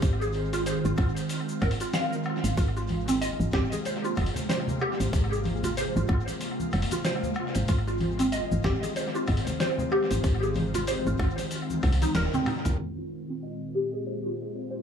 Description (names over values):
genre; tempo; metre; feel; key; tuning
organic downtempo; 94 BPM; 4/4; swing 59% on 16ths; unclear; A4 = 439 Hz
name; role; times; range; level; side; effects
ethereal airy pad; sustained chords; 0.0-14.8 s; Bb2 to F4; -33 LUFS; equal; ensemble chorus, built-in reverb, sidechain pumping
mallet-like synth pluck; arpeggios; 0.0-14.8 s; C4 to F5; -30 LUFS; equal; ensemble chorus, vintage 12-bit sampler grit, tape echo
woody FM bass; bass; 0.0-12.7 s; Eb1 to C2; -28 LUFS; equal; none
dusty soul sampler-style drum kit; drums; 0.0-14.8 s; cabasa, hi-hat, snare drum, toms, woodblock; -34 LUFS; left 1 dB; low-pass filter on hats, low-pass filter on perc, low-pass filter on snare, low-pass filter on toms, low-pass filter on room, tape echo
electronic kick drum; drums; 0.0-12.0 s; none; -29 LUFS; equal; overdrive
congas; percussion; 2.9-12.4 s; none; -36 LUFS; left 2 dB; tape echo
room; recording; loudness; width
light reverb, digital ambience; echo-heavy mix, low-pass filter; -25 LUFS; side -7 dB against mid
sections
0.0-12.8 A section; 12.8-14.8 B section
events
drum fill 12.2-12.8; band accent 12.2-12.5; filter sweep on drum 12.8-14.8; filter sweep on synth pluck 12.8-14.8; filter sweep on ambient pad 12.8-14.8; filter sweep 12.8-14.8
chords
0.0 Fm7/Ab; 2.6 Ab69; 7.7 Fm7/Ab; 12.8 Ab69